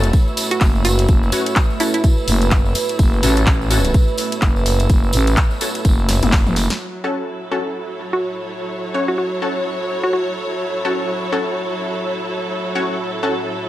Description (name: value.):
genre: bass house.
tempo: 126 BPM.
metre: 4/4.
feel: swing 59% on 16ths.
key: F# minor.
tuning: A4 = 439 Hz.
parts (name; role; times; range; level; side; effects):
dark analog pad; sustained chords; 0.0-13.7 s; A3 to C#5; -27 LUFS; right 3 dB; chorus, phaser, sidechain pumping.
orchestra-hit-like synth stab; stabs; 0.0-13.5 s; C#4 to C#5; -24 LUFS; left 2 dB; built-in reverb, sidechain pumping, tape echo.
growling FM bass; bass; 0.0-6.7 s; F#1 to A1; -17 LUFS; equal; sidechain pumping.
house drum kit; drums; 0.0-6.8 s; handclaps, hi-hat, snare drum, toms; -23 LUFS; left 1 dB; none.
tambourine; percussion; 0.0-6.8 s; none; -28 LUFS; right 3 dB; none.
warm studio string section; texture; 0.0-13.7 s; F#3 to C#5; -25 LUFS; right 1 dB; sidechain pumping.
electronic kick drum; drums; 0.1-6.4 s; none; -15 LUFS; equal; none.
hollow square pluck; melody; 0.5-2.0, 8.1-10.2 s; E4 to F#4; -23 LUFS; right 1 dB; chorus, tape echo.
room: light reverb.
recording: none.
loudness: -16 LUFS.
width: side -14 dB against mid.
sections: 0.0-6.8 A section; 6.8-13.7 B section.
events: filter sweep on FM bass 0.0-6.8; drum fill 6.1-6.8.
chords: 0.0 F#m.